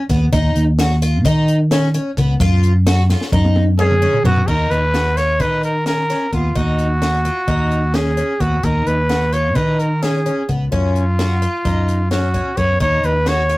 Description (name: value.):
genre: progressive instrumental, band music in an uneven meter.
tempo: 259 BPM (eighths).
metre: 9/8.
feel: straight.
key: Eb minor.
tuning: A4 = 438 Hz.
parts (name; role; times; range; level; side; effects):
picked twelve-string acoustic guitar; arpeggios; 0.1-13.6 s; Cb4 to F#4; -23 LUFS; left 1 dB; none.
fingered electric bass; bass; 0.1-13.6 s; Db2 to D#3; -16 LUFS; equal; none.
compact cocktail drum kit; drums; 0.1-13.6 s; crash cymbal, hi-hat, kick drum, snare drum, toms; -23 LUFS; equal; none.
clear trumpet; melody; 3.8-13.6 s; F4 to Db5; -19 LUFS; equal; none.
room: moderate booth ambience, RT60 0.2 s.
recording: rough rehearsal-room recording, tube saturation.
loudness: -14 LUFS.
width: side -19 dB against mid.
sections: 0.0-4.5 A section; 4.5-13.6 B section.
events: drum fill 3.1-4.5.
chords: 0.3 N.C.; 2.4 Gb5; 4.5 Ebm7; 8.6 B/D#; 10.7 Gb5; 12.8 Ebm7.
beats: 0.09 | 0.32 0.55 0.78 1.01 1.24 1.48 1.71 1.94 2.17 | 2.40 2.63 2.86 3.09 3.32 3.55 3.78 4.01 4.25 | 4.48 4.71 4.94 5.17 5.40 5.63 5.86 6.09 6.33 | 6.56 6.79 7.02 7.25 7.48 7.71 7.94 8.18 8.41 | 8.64 8.87 9.10 9.33 9.56 9.80 10.03 10.26 10.49 | 10.72 10.95 11.19 11.42 11.65 11.88 12.11 12.34 12.57 | 12.81 13.04 13.27 13.50.